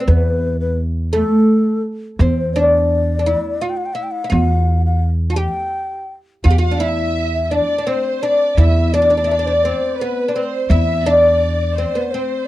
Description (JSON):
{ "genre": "Arabic maqam ensemble", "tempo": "85 BPM", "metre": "3/4", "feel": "straight", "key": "E maqam bayati", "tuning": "A4 = 439 Hz", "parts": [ { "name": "oud", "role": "melody", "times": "0.0-12.5 s", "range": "A3 to G4", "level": "-18 LUFS", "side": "equal", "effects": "none" }, { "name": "breathy low ney", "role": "second line", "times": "0.0-12.5 s", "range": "A4 to A5", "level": "-22 LUFS", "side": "left 5 dB", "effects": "none" }, { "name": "upright bass", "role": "bass", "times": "0.1-11.8 s", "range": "E2", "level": "-16 LUFS", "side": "equal", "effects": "none" }, { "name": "warm studio violin section", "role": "second line", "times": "6.4-12.4 s", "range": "B4 to F#5-50c", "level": "-26 LUFS", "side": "right 7 dB", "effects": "none" } ], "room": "little or no reverb", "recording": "dry, close 1970s-style studio recording", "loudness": "-14 LUFS", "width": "side -15 dB against mid", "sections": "0.0-12.5 A section", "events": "none", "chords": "none" }